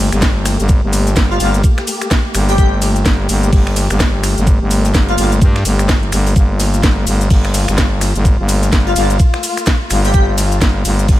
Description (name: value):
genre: bass house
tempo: 127 BPM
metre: 4/4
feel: swing 60% on 16ths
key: G minor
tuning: A4 = 440 Hz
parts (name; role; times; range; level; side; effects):
- warm symphonic string section; sustained chords; 0.0-11.2 s; A3 to G4; -22 LUFS; left 2 dB; sidechain pumping, low-pass filter
- growling FM bass; bass; 0.0-11.2 s; G1 to G2; -15 LUFS; equal; overdrive, sidechain pumping
- garage drum kit; drums; 0.1-11.2 s; cabasa, finger snaps, hi-hat, ride cymbal, snare drum; -20 LUFS; equal; small room reverb
- electronic kick drum; drums; 0.2-11.2 s; none; -12 LUFS; equal; small room reverb
- vintage drum kit; drums; 0.2-11.2 s; hi-hat, shaker, snare drum; -29 LUFS; right 2 dB; none
- airy dreamy lead; melody; 1.3-5.3, 8.9-10.2 s; F4 to G4; -21 LUFS; left 2 dB; chorus, ping-pong delay
room: small room ambience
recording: none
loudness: -11 LUFS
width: side -15 dB against mid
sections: 0.0-11.2 A section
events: none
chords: 0.0 Gmadd9